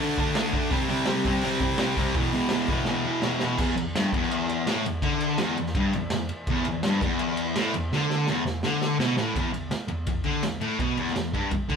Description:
garage rock duo or trio; 166 BPM; 4/4; straight; E minor; A4 = 440 Hz
fuzz guitar; riff; 0.0-11.8 s; E2 to D4; -25 LUFS; left 1 dB; distortion
raw garage drum kit; drums; 0.0-11.8 s; crash cymbal, hi-hat, kick drum, ride cymbal, snare drum; -29 LUFS; right 1 dB
moderate studio reverb, RT60 0.8 s; band playing live in one room; -23 LUFS; side -6 dB against mid
0.0-3.6 A section; 3.6-9.4 B section; 9.4-11.8 C section
drum fill 2.9-3.6, 7.9-9.4
0.0 D5; 0.7 C5; 2.1 E5; 3.6 N.C.

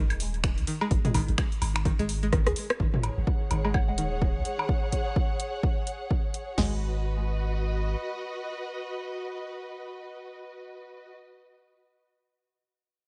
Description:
minimal techno; 127 BPM; 4/4; swing 59% on 16ths; G# minor; A4 = 440 Hz
string-like resonator pluck; riff; 0.0-6.8 s; D#3 to G#4; -36 LUFS; equal; chorus, sidechain pumping, digital delay
punchy sub bass; bass; 0.0-8.0 s; D#1 to D#2; -32 LUFS; equal; sidechain pumping
punchy analog drum machine; drums; 0.1-6.5 s; finger snaps, hi-hat, rim click; -35 LUFS; equal; overdrive, studio ambience
electronic woodblock and toms; percussion; 0.1-4.7 s; -34 LUFS; equal; overdrive, studio ambience, dub echo
punchy analog drum machine; drums; 0.4-6.7 s; crash cymbal, kick drum, snare drum, toms; -30 LUFS; equal; overdrive, studio ambience
rich studio string section; texture; 2.8-11.1 s; F#4 to F#5; -38 LUFS; equal; sidechain pumping
soft synth bell; melody; 3.7-3.9 s; F#5; -41 LUFS; equal; chorus, dub echo
light reverb, digital ambience; nothing above 10.5 kHz; -28 LUFS; mono
0.0-2.8 A section; 2.8-6.6 B section; 6.6-10.4 C section
drop 0.0-2.8; drum fill 2.3-2.8
0.0 G#5; 6.6 G#m

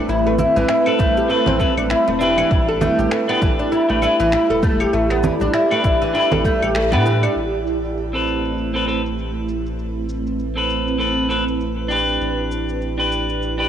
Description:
organic downtempo; 99 BPM; 4/4; swing 58% on 16ths; A minor; A4 = 443 Hz
ethereal airy pad; sustained chords; 0.0-13.7 s; A3 to D5; -23 LUFS; right 2 dB; ensemble chorus, built-in reverb, sidechain pumping, cassette tape, shimmer reverb
oud; arpeggios; 0.0-7.4 s; E3 to A4; -19 LUFS; left 1 dB; cassette tape, analog delay, shimmer reverb
round analog bass; bass; 0.1-13.7 s; E1 to A2; -25 LUFS; equal; sidechain pumping
electronic shaker, finger snaps and claves; drums; 0.1-13.6 s; -29 LUFS; left 2 dB; overdrive, low-pass filter on snare, low-pass filter on perc
congas; percussion; 0.4-7.3 s; -26 LUFS; right 3 dB
clean electric guitar; accompaniment; 0.9-13.7 s; C4 to B4; -23 LUFS; equal; sidechain pumping, cassette tape, analog delay, shimmer reverb
electronic kick drum; drums; 1.0-6.6 s; -20 LUFS; equal; overdrive
moderate lush hall reverb, RT60 2.2 s; home recording on cassette; -16 LUFS; side -9 dB against mid
0.0-7.4 A section; 7.4-13.7 B section
band accent 6.8-7.1; filter sweep on ambient pad 7.4-13.7
0.0 Amadd9; 2.5 Em7; 7.4 Amadd9

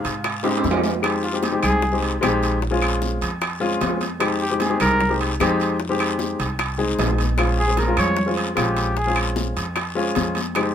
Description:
Afro-Cuban jazz; 151 BPM; 4/4; straight; F minor; A4 = 441 Hz
breathy trumpet; melody; 0.0-2.0, 4.4-5.2, 7.6-9.2 s; F4 to F5; -23 LUFS; equal
breathy baritone saxophone; second line; 0.0-0.6 s; C3; -38 LUFS; right 5 dB
warm grand piano; accompaniment; 0.0-10.7 s; Ab3 to Ab5; -23 LUFS; left 2 dB
upright bass; bass; 0.0-10.7 s; Bb1 to Ab2; -26 LUFS; right 1 dB
bongos; percussion; 0.0-10.7 s; -29 LUFS; left 6 dB
timbales; percussion; 0.0-10.7 s; -26 LUFS; right 5 dB
guiro; percussion; 0.1-10.7 s; -34 LUFS; left 5 dB
claves; percussion; 0.2-10.7 s; -28 LUFS; left 4 dB
congas; percussion; 0.2-10.7 s; -30 LUFS; left 1 dB
light reverb; minimal, uncompressed stereo recording; -19 LUFS; side -9 dB against mid
0.0-1.0 A section; 1.0-10.7 B section
drum fill 0.4-1.0; trumpet solo 1.0-10.7; grand piano fill 6.6-7.4
0.0 Fm7; 2.6 Bbm7; 4.2 Fm7; 7.4 Bbm7

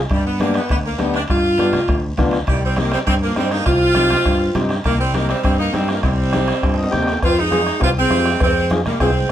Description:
latin, cumbia; 202 BPM; 4/4; straight; C harmonic minor; A4 = 439 Hz
fingered electric bass; bass; 0.0-9.2 s; C2 to G2; -22 LUFS; equal
clear saxophone section; melody; 0.1-9.3 s; G3 to F4; -19 LUFS; equal
bombo; percussion; 0.1-9.3 s; -22 LUFS; equal
congas; percussion; 0.1-9.2 s; -27 LUFS; equal
guiro; percussion; 0.1-9.3 s; -36 LUFS; left 2 dB
timbales and cowbell; percussion; 0.1-9.2 s; -31 LUFS; right 2 dB
combo organ; accompaniment; 0.4-9.1 s; B3 to G5; -23 LUFS; left 2 dB
bright tenor saxophone; second line; 2.5-9.3 s; Eb3 to C4; -27 LUFS; right 4 dB
wet small room reverb, RT60 0.5 s; band playing live in one room; -15 LUFS; side -11 dB against mid
0.0-7.2 A section; 7.2-9.3 B section
drum fill 6.6-7.2; transistor combo organ fill 6.6-7.2
0.1 G; 2.5 Cm; 7.2 Fm

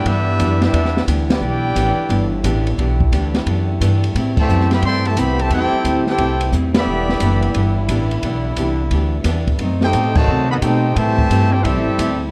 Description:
jazz, big band swing; 176 BPM; 4/4; swing 65% on 8ths; E minor; A4 = 437 Hz
clear trumpet section; melody; 0.0-2.3, 4.4-7.8, 9.8-12.2 s; C4 to C6; -23 LUFS; equal
warm trombone section; second line; 0.0-2.3, 4.4-7.7, 9.8-12.2 s; C3 to G4; -26 LUFS; equal
bright trombone section; sustained chords; 0.0-12.3 s; C3 to G4; -30 LUFS; equal
upright bass; bass; 0.0-12.3 s; E1 to C3; -21 LUFS; equal
archtop guitar, miked and amplified; accompaniment; 0.1-12.2 s; A2 to G4; -27 LUFS; equal
open jazz drum kit; drums; 0.1-12.1 s; crash cymbal, hi-hat, kick drum, ride cymbal, snare drum; -25 LUFS; equal
light reverb; dark, warm production; -17 LUFS; mono
0.0-12.3 A section
band accent 1.2, 4.3, 6.7, 10.1
0.0 Em7; 4.1 Am7; 6.9 Em7; 9.6 B7b9; 11.0 Am7

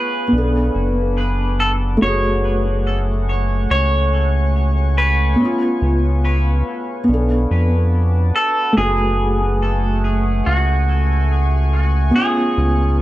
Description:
trip hop; 71 BPM; 4/4; swing 59% on 16ths; F# harmonic minor; A4 = 437 Hz
clean electric guitar; melody; 0.0-13.0 s; F#4 to C#5; -22 LUFS; right 1 dB; tape echo
felt-muted upright piano; accompaniment; 0.0-13.0 s; A3 to A4; -21 LUFS; equal; harmonic tremolo, tape echo
deep dark ambient pad; sustained chords; 0.0-13.0 s; A3 to D6; -26 LUFS; equal; chorus, built-in reverb
round analog bass; bass; 0.3-13.0 s; F#1 to E#2; -17 LUFS; equal
digital ambience; echo-heavy mix; -15 LUFS; side -15 dB against mid
0.0-13.0 A section
0.3 Bm7; 2.0 F#madd9; 5.4 C#7; 7.1 Bm7; 8.8 F#madd9; 12.2 C#7

